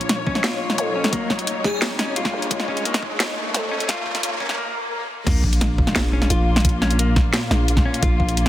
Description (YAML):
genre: half-time drum and bass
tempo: 174 BPM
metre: 4/4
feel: half-time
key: Bb minor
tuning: A4 = 441 Hz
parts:
  - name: dark studio string section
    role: sustained chords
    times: 0.0-8.5 s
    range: Bb2 to Db5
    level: -28 LUFS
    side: left 2 dB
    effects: sidechain pumping
  - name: growling 808-style bass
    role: bass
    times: 0.0-8.5 s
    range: F1 to F2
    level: -23 LUFS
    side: equal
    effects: tube saturation, high-pass filter
  - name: drum and bass drum kit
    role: drums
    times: 0.0-8.5 s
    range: crash cymbal, hi-hat, snare drum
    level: -23 LUFS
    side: equal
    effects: overdrive
  - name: riser, swell and sub drop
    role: sound effects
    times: 0.0-6.6 s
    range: none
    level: -28 LUFS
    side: equal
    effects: none
  - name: clean electric guitar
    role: arpeggios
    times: 0.3-8.5 s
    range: Bb3 to F4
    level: -29 LUFS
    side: left 3 dB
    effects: vintage 12-bit sampler grit, dub echo
  - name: electronic kick drum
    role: drums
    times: 0.3-8.3 s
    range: none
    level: -21 LUFS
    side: equal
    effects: none
  - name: airy dreamy lead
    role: melody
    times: 1.6-1.9 s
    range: Ab4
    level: -31 LUFS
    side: left 3 dB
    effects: none
room: light reverb, digital ambience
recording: dense, heavily limited modern master, high-pass filter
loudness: -18 LUFS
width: side -13 dB against mid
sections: 0.0-5.3 A section; 5.3-8.5 B section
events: build-up 0.0-5.3; riser 0.0-4.6; filter sweep 0.0-5.3; break 4.6-5.3; swell 4.6-5.3; drop 5.3-8.5; impact 5.3-6.6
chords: 0.0 Bbm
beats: 0.10 0.44 0.79 | 1.13 1.47 1.82 2.16 | 2.51 2.85 3.20 3.54 | 3.89 4.23 4.58 4.92 | 5.27 5.61 5.96 6.30 | 6.65 6.99 7.34 7.68 | 8.03 8.37